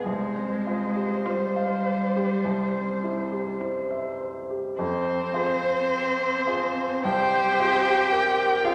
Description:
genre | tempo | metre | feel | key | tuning
classical, slow romantic movement for piano quartet | 49-57 BPM | 4/4 | rubato | F minor | A4 = 440 Hz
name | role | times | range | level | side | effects
warm violin | melody | 0.0-8.7 s | C5 to G5 | -29 LUFS | equal | none
rich cello | second line | 0.0-8.7 s | G3 to G4 | -30 LUFS | equal | none
clear baby grand piano | accompaniment | 0.0-8.7 s | C2 to F5 | -32 LUFS | equal | none
warm viola | accompaniment | 1.3-8.7 s | E4 to C5 | -30 LUFS | equal | none
room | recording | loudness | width
wet concert hall reverb, RT60 2.1 s | none | -25 LUFS | mono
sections
0.0-4.8 A section; 4.8-8.7 B section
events
none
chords
0.1 Csus4; 2.5 C; 4.8 Fm

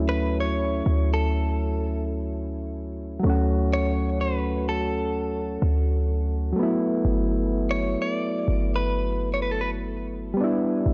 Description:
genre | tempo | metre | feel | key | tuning
contemporary R&B | 63 BPM | 4/4 | swing 54% on 16ths | D major | A4 = 440 Hz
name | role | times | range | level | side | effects
soft electric-piano-like synth keys | accompaniment | 0.0-10.9 s | F#3 to F#4 | -29 LUFS | equal | chorus
warm 808-style bass | bass | 0.0-10.9 s | G1 to D2 | -28 LUFS | equal | none
direct-recorded clean electric guitar | melody | 0.1-9.7 s | A4 to D5 | -32 LUFS | equal | tape echo
room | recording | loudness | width
digital ambience | dry, gritty hardware recording, cassette tape, nothing above 8.0 kHz | -25 LUFS | mono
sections
0.0-10.9 A section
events
none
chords
0.0 Dmaj9; 6.6 Gmaj13; 10.4 A9sus4

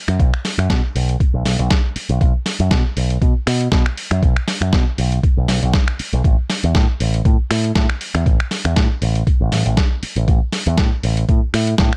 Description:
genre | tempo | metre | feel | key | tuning
nu-disco, nu disco | 119 BPM | 4/4 | swing 54% on 16ths | unclear | A4 = 441 Hz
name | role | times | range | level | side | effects
picked electric bass with an envelope filter | bass | 0.1-11.9 s | A1 to B2 | -20 LUFS | equal | tube saturation
dusty soul sampler-style drum kit | drums | 0.1-12.0 s | finger snaps, hi-hat, snare drum | -24 LUFS | equal | none
electronic kick drum | drums | 0.2-11.9 s | none | -18 LUFS | equal | none
room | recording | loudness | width
digital ambience | dry, gritty hardware recording, transformer saturation | -17 LUFS | mono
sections
0.0-12.0 A section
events
none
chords
none

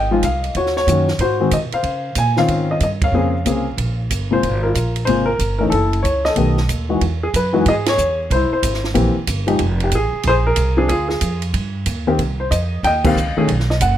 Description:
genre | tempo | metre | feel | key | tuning
jazz piano trio | 186 BPM | 4/4 | swing 64% on 8ths | Ab major | A4 = 438 Hz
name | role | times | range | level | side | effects
dark baby grand piano | melody | 0.0-14.0 s | C3 to Ab5 | -17 LUFS | left 2 dB | none
upright bass | bass | 0.0-14.0 s | F1 to Db3 | -20 LUFS | right 1 dB | none
compact cocktail drum kit | drums | 0.2-13.9 s | crash cymbal, hi-hat, kick drum, ride cymbal, snare drum | -25 LUFS | right 3 dB | none
room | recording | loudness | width
light reverb | none | -15 LUFS | side -11 dB against mid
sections
0.0-7.0 A section; 7.0-14.0 B section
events
band accent 3.0, 7.8, 13.0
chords
0.0 Fm9; 0.6 Ebm7; 1.2 Ab7; 1.8 Dbmaj9; 3.1 Bbm9; 3.8 Abmaj13 (rootless); 4.4 Ab69; 5.7 Gbm7; 6.4 B7b13; 7.0 Eadd9; 8.3 C7; 9.6 Fm; 10.9 Ddim; 11.5 Eb; 12.2 Cm

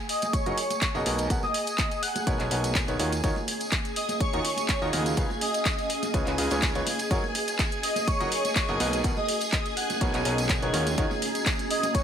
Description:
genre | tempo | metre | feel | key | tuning
piano house | 124 BPM | 4/4 | swing 54% on 16ths | F# major | A4 = 441 Hz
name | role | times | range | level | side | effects
string machine, violins | sustained chords | 0.0-12.0 s | G#4 to G#5 | -33 LUFS | equal | ensemble chorus, sidechain pumping
granular cloud pad | texture | 1.6-12.0 s | B3 to A#5 | -38 LUFS | right 1 dB | built-in reverb, sidechain pumping
airy dreamy lead | melody | 0.1-12.0 s | C#5 to F#5 | -30 LUFS | equal | chorus, cassette tape
garage drum kit | drums | 0.1-12.0 s | handclaps, hi-hat | -30 LUFS | equal | none
tambourine and congas | percussion | 0.2-12.0 s | none | -36 LUFS | right 4 dB | none
electronic kick drum | drums | 0.3-12.0 s | none | -29 LUFS | equal | none
clear baby grand piano | riff | 0.5-11.1 s | B2 to F#5 | -30 LUFS | equal | sidechain pumping, ping-pong delay
fat analog bass | bass | 0.5-11.1 s | F#1 to D#2 | -31 LUFS | equal | sidechain pumping
riser | sound effects | 11.8-12.0 s | none | -49 LUFS | right 2 dB | none
room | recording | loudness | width
light reverb, digital ambience | none | -24 LUFS | side -8 dB against mid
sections
0.0-12.0 A section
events
fade-in on ambient pad 0.0-12.0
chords
0.0 F#69; 1.1 Bmaj9; 3.0 D#m9; 5.2 C#9; 7.1 F#69; 8.8 Bmaj9; 10.7 D#m9

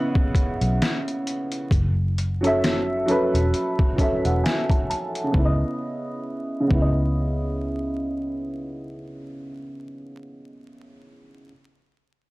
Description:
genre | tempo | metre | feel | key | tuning
lo-fi hip hop | 66 BPM | 4/4 | swing 57% on 16ths | C# minor | A4 = 439 Hz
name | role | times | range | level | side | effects
clear upright piano | accompaniment | 0.0-11.5 s | C#3 to A5 | -25 LUFS | right 1 dB | cassette tape, low-pass filter, plate reverb
trip hop sampler-style drum kit | drums | 0.2-7.0 s | hi-hat, kick drum, snare drum | -22 LUFS | equal | none
vintage muted fingered electric bass | bass | 0.6-10.4 s | E1 to C#2 | -23 LUFS | equal | none
room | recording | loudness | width
light reverb | dry, gritty hardware recording, vinyl crackle | -21 LUFS | side -20 dB against mid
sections
0.0-5.3 A section; 5.3-9.0 B section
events
filter sweep on upright piano 0.0-5.3; upright piano fill 3.5-5.3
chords
0.0 C#m9; 1.7 F#m7; 5.3 C#m9

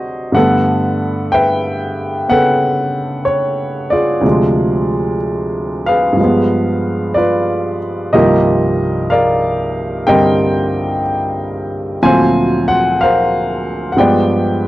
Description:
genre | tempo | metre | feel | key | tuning
solo jazz | 62 BPM | 4/4 | swing 67% on 8ths | unclear | A4 = 440 Hz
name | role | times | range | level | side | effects
warm upright piano | solo | 0.0-14.7 s | C2 to Ab5 | -12 LUFS | equal | none
room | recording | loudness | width
light reverb | dry, close 1970s-style studio recording | -12 LUFS | side -16 dB against mid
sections
0.0-14.7 A section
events
none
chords
0.3 G69; 4.2 Dm7b5; 6.2 G7b9; 8.1 Cm11; 12.0 D7alt; 14.0 G7b9

